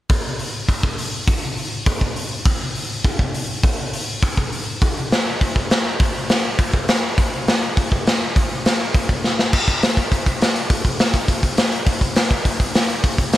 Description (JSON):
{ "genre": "punk", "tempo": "204 BPM", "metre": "4/4", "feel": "straight", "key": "none", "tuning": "none", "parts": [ { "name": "raw garage drum kit", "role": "drums", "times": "0.1-13.4 s", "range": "crash cymbal, hi-hat, kick drum, snare drum", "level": "-17 LUFS", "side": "equal", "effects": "none" } ], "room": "little or no reverb", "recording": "none", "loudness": "-17 LUFS", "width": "side -14 dB against mid", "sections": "0.1-9.5 A section; 9.5-13.4 B section", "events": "drum fill 9.2", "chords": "none" }